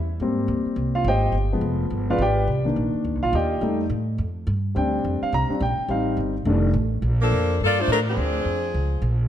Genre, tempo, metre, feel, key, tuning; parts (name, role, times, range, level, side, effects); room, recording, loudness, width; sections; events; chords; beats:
jazz, big band swing; 211 BPM; 4/4; swing 60% on 8ths; A4 = 441 Hz
upright bass; bass; 0.0-9.3 s; F1 to A2; -24 LUFS; equal
warm grand piano; accompaniment; 0.2-6.7 s; Eb3 to Bb5; -23 LUFS; left 1 dB
mellow saxophone section; melody; 7.2-9.2 s; F3 to D5; -22 LUFS; left 1 dB
light reverb; -20 LUFS; side -10 dB against mid
0.0-7.0 A section; 7.0-9.3 B section
grand piano solo 0.0-7.0
0.2 Abmaj9; 1.3 G7b9; 2.5 Cm9; 3.6 F9; 4.8 Bb69; 5.9 Am7b5; 6.5 F13; 7.0 Bbmaj7; 8.2 Dm7b5; 8.7 Db
| 0.21 0.49 0.78 1.06 | 1.34 1.63 1.91 2.20 | 2.48 2.77 3.05 3.33 | 3.62 3.90 4.19 4.47 | 4.75 5.04 5.32 5.61 | 5.89 6.18 6.46 6.75 | 7.03 7.31 7.60 7.88 | 8.17 8.45 8.74 9.02